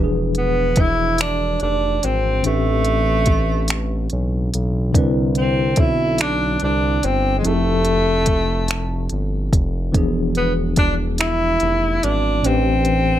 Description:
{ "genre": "slow six-eight R&B", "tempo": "48 BPM (dotted quarters)", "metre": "6/8", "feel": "straight", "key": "unclear", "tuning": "A4 = 440 Hz", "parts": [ { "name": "tine electric piano", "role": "accompaniment", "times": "0.0-13.2 s", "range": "A2 to B4", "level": "-24 LUFS", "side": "left 1 dB", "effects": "overdrive, fast stereo tremolo, plate reverb" }, { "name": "smooth synth bass", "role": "bass", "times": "0.0-13.2 s", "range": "E1 to C2", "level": "-21 LUFS", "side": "equal", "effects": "none" }, { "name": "smooth R&B drum kit", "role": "drums", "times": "0.3-13.0 s", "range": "finger snaps, hi-hat, kick drum", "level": "-19 LUFS", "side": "equal", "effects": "none" }, { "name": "warm tenor saxophone", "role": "melody", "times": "0.4-13.2 s", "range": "Ab3 to E4", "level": "-20 LUFS", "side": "equal", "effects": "slapback echo, plate reverb" } ], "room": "light reverb", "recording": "none", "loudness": "-16 LUFS", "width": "side -12 dB against mid", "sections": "0.0-13.2 A section", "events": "none", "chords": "0.0 E7b9; 2.4 Am11; 4.9 Cmaj9; 7.4 Fmaj9; 9.9 E7b9; 12.4 Am11" }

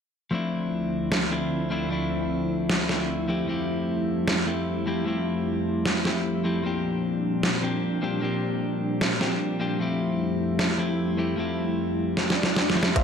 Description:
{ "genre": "future bass", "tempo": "152 BPM", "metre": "4/4", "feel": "swing 56% on 16ths, half-time", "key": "F major", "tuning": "A4 = 442 Hz", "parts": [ { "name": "clean electric guitar", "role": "accompaniment", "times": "0.3-13.0 s", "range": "F3 to G4", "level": "-27 LUFS", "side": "left 3 dB", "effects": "spring reverb, sidechain pumping, dub echo" }, { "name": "airy breathy pad", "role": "sustained chords", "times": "0.3-13.0 s", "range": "D2 to E4", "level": "-29 LUFS", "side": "right 3 dB", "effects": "chorus, sidechain pumping" }, { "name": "dubstep drum kit", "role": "drums", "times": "1.1-13.0 s", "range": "hi-hat, rim click, snare drum", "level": "-24 LUFS", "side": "right 1 dB", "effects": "none" }, { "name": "swell and riser", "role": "sound effects", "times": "12.3-13.0 s", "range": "none", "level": "-31 LUFS", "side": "left 2 dB", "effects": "none" }, { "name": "supersaw stab", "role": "riff", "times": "13.0 s", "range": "A3 to E5", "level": "-24 LUFS", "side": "left 1 dB", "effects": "phaser, sidechain pumping, low-pass filter" }, { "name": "electronic kick drum", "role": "drums", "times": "13.0 s", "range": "none", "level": "-21 LUFS", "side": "right 1 dB", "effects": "overdrive" } ], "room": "moderate digital room reverb, RT60 1.1 s", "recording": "dark, warm production", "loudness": "-23 LUFS", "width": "side -7 dB against mid", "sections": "0.3-13.0 A section", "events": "drum fill 12.2-13.0; swell 12.3-13.0", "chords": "0.3 Dm9; 3.3 Fmaj9; 6.6 Bb69; 9.8 Fmaj9" }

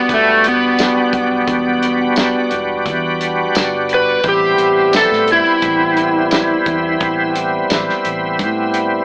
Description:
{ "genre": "straight-eighth soul blues", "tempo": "87 BPM", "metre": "4/4", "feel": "straight", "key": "E minor", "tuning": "A4 = 441 Hz", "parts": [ { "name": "overdriven slide guitar", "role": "melody", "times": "0.0-7.3 s", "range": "A3 to B4", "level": "-13 LUFS", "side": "equal", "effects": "none" }, { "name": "bright tonewheel organ", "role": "accompaniment", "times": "0.0-9.0 s", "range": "G3 to F#4", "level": "-16 LUFS", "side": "equal", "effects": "slow rotary speaker, overdrive, chorus vibrato" }, { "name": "vintage muted fingered electric bass", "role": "bass", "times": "0.1-9.0 s", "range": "E1 to A2", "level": "-27 LUFS", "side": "equal", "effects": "none" }, { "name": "warm soul drum kit", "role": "drums", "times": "0.1-8.9 s", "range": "hi-hat, kick drum, snare drum, tambourine", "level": "-19 LUFS", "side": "equal", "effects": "none" } ], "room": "moderate studio reverb, RT60 0.5 s", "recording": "band playing live in one room, AM radio sound", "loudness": "-12 LUFS", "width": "side -32 dB against mid", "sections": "0.0-9.0 A section", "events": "electric slide guitar solo 0.0-9.0", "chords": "0.0 Em7; 4.2 Am7" }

